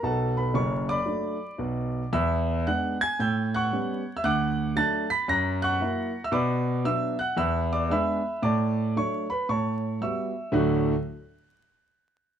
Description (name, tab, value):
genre	jazz, stride piano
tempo	114 BPM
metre	4/4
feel	swing 65% on 8ths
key	D major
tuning	A4 = 443 Hz
part	warm concert grand piano	solo	0.0-10.9 s	F#1 to B6	-24 LUFS	right 1 dB	none
room	moderate club reverb, RT60 0.8 s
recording	vinyl crackle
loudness	-24 LUFS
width	side -9 dB against mid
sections	0.0-10.5 A section; 10.5-12.4 B section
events	none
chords	0.0 Bm7; 2.1 E7; 3.2 A13; 4.2 D; 5.3 F#7; 6.3 Bm; 7.4 E7; 8.4 D/A; 9.5 A13; 10.5 D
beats	| 0.04 0.56 1.08 1.61 | 2.13 2.66 3.18 3.71 | 4.23 4.76 5.28 5.81 | 6.33 6.86 7.38 7.91 | 8.43 8.96 9.48 10.01 | 10.53